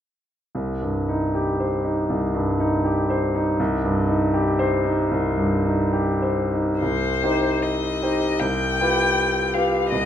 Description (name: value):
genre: classical, slow romantic movement for piano quartet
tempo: 77 BPM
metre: 4/4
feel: uneven beats, rubato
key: C minor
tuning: A4 = 440 Hz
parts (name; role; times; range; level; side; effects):
- bright concert grand piano; accompaniment; 0.5-10.1 s; C2 to C5; -20 LUFS; equal; none
- rich violin; melody; 6.8-10.1 s; C5 to G5; -23 LUFS; left 4 dB; none
room: moderate recital hall reverb, RT60 1.4 s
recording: minimal, uncompressed stereo recording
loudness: -19 LUFS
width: side -10 dB against mid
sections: 0.5-6.8 A section; 6.8-10.1 B section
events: none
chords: 0.5 Cm; 8.4 G7/C